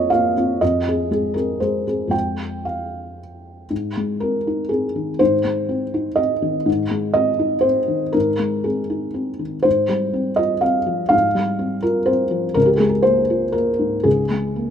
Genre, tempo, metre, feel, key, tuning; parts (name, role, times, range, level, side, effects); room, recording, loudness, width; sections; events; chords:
neoclassical minimalist piano; 121 BPM; 3/4; rubato; A4 = 440 Hz
felt-muted upright piano; solo; 0.0-14.7 s; Db2 to G5; -17 LUFS; equal
light reverb, studio ambience; rough home demo mix; -17 LUFS; side -8 dB against mid
0.0-3.7 A section; 3.7-14.7 B section
0.0 Bbmadd9/F; 0.6 Fm; 3.7 Ab; 9.7 Fmadd9/Ab; 12.6 Db6